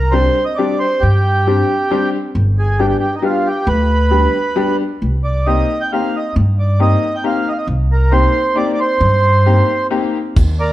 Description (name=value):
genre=musette waltz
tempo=135 BPM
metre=3/4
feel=swing 53% on 8ths, rubato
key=C minor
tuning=A4 = 439 Hz
part: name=mellow accordion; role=melody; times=0.0-10.7 s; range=Eb4 to G5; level=-17 LUFS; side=right 2 dB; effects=none
part: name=upright bass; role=bass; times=0.0-10.7 s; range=G1 to G2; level=-14 LUFS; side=equal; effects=none
part: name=bright upright piano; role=accompaniment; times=0.1-10.2 s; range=G3 to G4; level=-19 LUFS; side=left 4 dB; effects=none
part: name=soft brush drum kit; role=drums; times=10.4-10.5 s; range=kick drum, ride cymbal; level=-14 LUFS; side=equal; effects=none
room=moderate recital hall reverb, RT60 1.6 s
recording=dark, warm production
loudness=-13 LUFS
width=side -14 dB against mid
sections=0.0-10.4 A section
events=none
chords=0.0 Csus2; 2.4 G; 5.0 Cm7